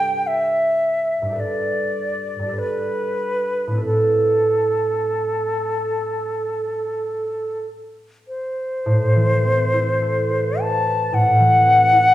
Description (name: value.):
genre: classical, impressionist duo for flute and harp.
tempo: 45-56 BPM.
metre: 4/4.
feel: rubato.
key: A minor.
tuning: A4 = 439 Hz.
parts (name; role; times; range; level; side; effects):
concert flute; melody; 0.0-12.1 s; A4 to A5; -18 LUFS; equal; none.
concert harp; accompaniment; 0.0-12.1 s; G2 to C5; -22 LUFS; right 1 dB; none.
room: wet recital hall reverb, RT60 1.4 s.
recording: heard from further back in the room.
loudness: -17 LUFS.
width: side -14 dB against mid.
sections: 0.0-8.9 A section; 8.9-12.1 B section.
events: none.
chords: 0.0 Gadd9; 3.9 Amadd9.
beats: 0.29 1.40 2.58 | 3.86 5.15 6.41 7.64 | 8.88 10.04 11.15.